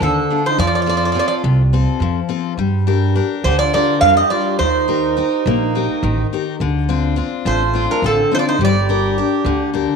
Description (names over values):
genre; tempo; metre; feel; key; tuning
greek folk, Greek bouzouki band; 210 BPM (eighths); 7/8; straight; unclear; A4 = 436 Hz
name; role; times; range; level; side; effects
Greek bouzouki; melody; 0.0-9.7 s; A4 to F5; -18 LUFS; right 4 dB; none
accordion; second line; 0.0-9.7 s; C4 to Bb4; -23 LUFS; right 12 dB; none
picked steel-string acoustic guitar; accompaniment; 0.0-10.0 s; C3 to Bb4; -19 LUFS; left 9 dB; none
upright bass; bass; 0.0-9.8 s; G1 to G2; -19 LUFS; right 1 dB; none
room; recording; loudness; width
light reverb, small room reverb; 1960s-style stereo with parts hard left and right; -14 LUFS; side -5 dB against mid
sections
0.0-10.0 A section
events
none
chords
0.0 Dm; 0.6 F; 2.6 Gm; 4.6 Eb; 6.6 Dm7; 8.6 Gm